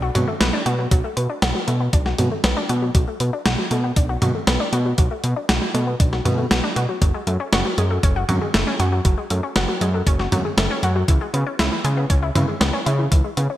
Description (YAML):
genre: synthwave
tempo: 118 BPM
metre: 4/4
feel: straight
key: unclear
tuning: A4 = 440 Hz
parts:
  - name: analog pluck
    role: arpeggios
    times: 0.0-13.6 s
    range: E3 to F#4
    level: -25 LUFS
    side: left 1 dB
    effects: chorus, digital delay
  - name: fat analog bass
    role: bass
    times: 0.0-13.5 s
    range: F#1 to C#3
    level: -21 LUFS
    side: equal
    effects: none
  - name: gated 80s digital drum machine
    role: drums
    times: 0.2-13.5 s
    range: hi-hat, snare drum, toms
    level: -22 LUFS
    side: equal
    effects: gated reverb, gated reverb snare
  - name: electronic kick drum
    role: drums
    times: 0.9-13.2 s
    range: none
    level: -18 LUFS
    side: equal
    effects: none
room: moderate lush hall reverb, RT60 1.7 s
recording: bright 1980s-style digital production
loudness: -18 LUFS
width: side -14 dB against mid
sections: 0.0-13.6 A section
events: none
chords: 0.0 Bm7; 7.0 F#madd9; 11.1 C#m7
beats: 0.41 | 0.91 1.42 1.93 2.44 | 2.95 3.46 3.96 4.47 | 4.98 5.49 6.00 6.51 | 7.02 7.53 8.03 8.54 | 9.05 9.56 10.07 10.57 | 11.08 11.59 12.10 12.61 | 13.12